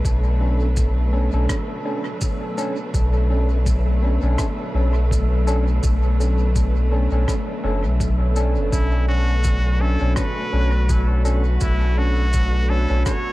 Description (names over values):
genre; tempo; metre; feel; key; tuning
ambient dub; 83 BPM; 4/4; swing 56% on 16ths; B minor; A4 = 436 Hz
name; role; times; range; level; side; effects
rich studio string section; sustained chords; 0.0-13.3 s; B2 to B4; -29 LUFS; right 1 dB; none
soft dub sub bass; bass; 0.0-13.0 s; F#1 to B1; -18 LUFS; equal; none
electronic kick drum; drums; 0.0-13.2 s; none; -24 LUFS; equal; none
wind-like tuned noise texture; texture; 0.0-13.3 s; A3 to A4; -32 LUFS; left 1 dB; built-in reverb
shaker and rim click; drums; 0.1-13.2 s; none; -35 LUFS; equal; dub echo
overdriven tine electric piano; stabs; 0.4-13.1 s; C#4 to A4; -28 LUFS; equal; lush chorus, dub echo
trumpet with straight mute; melody; 8.7-13.3 s; E4 to C#5; -27 LUFS; equal; dub echo
room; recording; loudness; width
light reverb, small room ambience; echo-heavy mix; -17 LUFS; side -18 dB against mid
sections
0.0-13.3 A section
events
none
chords
0.0 Bm9